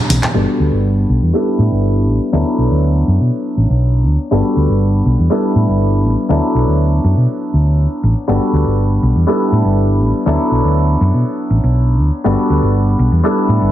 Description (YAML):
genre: house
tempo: 121 BPM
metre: 4/4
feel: straight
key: D major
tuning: A4 = 440 Hz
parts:
  - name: warm grand piano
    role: accompaniment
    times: 0.0-13.7 s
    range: F#3 to A4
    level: -16 LUFS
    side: left 1 dB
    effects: phaser, low-pass filter
  - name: hollow-body short-scale fingered electric bass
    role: bass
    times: 0.1-13.7 s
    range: G1 to B2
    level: -13 LUFS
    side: equal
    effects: low-pass filter
room: light reverb, small room ambience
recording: heavily compressed radio sound, multiband compression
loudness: -12 LUFS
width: side -12 dB against mid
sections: 0.3-13.7 A section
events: filter sweep 0.3-13.7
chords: 0.3 Gmaj7; 1.3 A9sus4; 2.3 D69; 4.3 Gmaj7; 5.3 A9sus4; 6.3 D69; 8.3 Gmaj7; 9.3 A9sus4; 10.3 D69; 12.2 Gmaj7